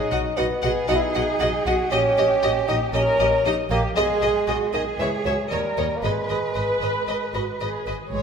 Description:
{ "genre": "cinematic, playful, whimsical film cue", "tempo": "117 BPM", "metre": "4/4", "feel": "straight", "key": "G# minor", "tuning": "A4 = 440 Hz", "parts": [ { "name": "dark bassoon", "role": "accompaniment", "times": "0.0-7.6 s", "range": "D#3 to F#4", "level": "-23 LUFS", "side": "right 1 dB", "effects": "none" }, { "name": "warm chamber cello section", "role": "bass", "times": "0.0-8.2 s", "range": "G#3 to B4", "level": "-28 LUFS", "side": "right 3 dB", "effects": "none" }, { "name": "rich chamber violin section", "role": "melody", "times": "0.1-8.2 s", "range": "C#5 to F#5", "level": "-31 LUFS", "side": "left 3 dB", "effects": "none" }, { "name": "warm chamber violin section", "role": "second line", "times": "0.1-7.9 s", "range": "B4 to D#5", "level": "-30 LUFS", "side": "left 2 dB", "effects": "none" }, { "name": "dark studio viola section", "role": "accompaniment", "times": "0.1-8.1 s", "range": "F#4 to B4", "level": "-29 LUFS", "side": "equal", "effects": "none" }, { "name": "dark chamber double bass section", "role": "bass", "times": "0.1-8.2 s", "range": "G#1 to D#2", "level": "-29 LUFS", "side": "right 2 dB", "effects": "none" } ], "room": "wet scoring stage reverb, RT60 1.8 s", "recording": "minimal, uncompressed stereo recording", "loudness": "-20 LUFS", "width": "side -6 dB against mid", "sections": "0.0-8.1 A section", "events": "none", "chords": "0.0 B; 1.9 D#7/A#; 4.0 G#m/B; 5.0 C#m; 5.5 D#7; 6.0 G#m", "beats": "0.37 0.89 1.40 | 1.91 2.42 2.94 3.45 | 3.97 4.48 4.99 5.51 | 6.03 6.56 7.08 7.60 | 8.13" }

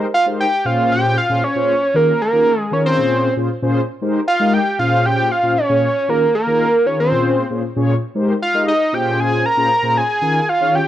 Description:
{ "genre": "funk", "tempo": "116 BPM", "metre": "4/4", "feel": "straight", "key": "Bb dorian", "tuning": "A4 = 441 Hz", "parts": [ { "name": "mellow synth brass", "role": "accompaniment", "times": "0.0-10.8 s", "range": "Bb2 to Eb5", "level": "-19 LUFS", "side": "left 1 dB", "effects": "chorus" }, { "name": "fat analog lead", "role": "melody", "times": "0.1-10.9 s", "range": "Bb4 to Bb5", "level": "-15 LUFS", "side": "right 1 dB", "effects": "none" } ], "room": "moderate large studio reverb, RT60 0.9 s", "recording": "dark, warm production", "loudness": "-14 LUFS", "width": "side -12 dB against mid", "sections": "0.0-10.9 A section", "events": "none", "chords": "0.0 Abmaj9; 0.7 Bbm9; 1.9 Eb9sus4; 3.0 Bbm9; 4.0 Abmaj9; 4.8 Bbm9; 6.1 Eb9sus4; 7.1 Bbm9; 8.2 Abmaj9; 8.9 Bbm9; 10.2 Eb9sus4", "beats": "0.39 0.91 1.43 | 1.95 2.46 2.98 3.50 | 4.01 4.53 5.05 5.57 | 6.08 6.60 7.12 7.64 | 8.15 8.67 9.19 9.71 | 10.22 10.74" }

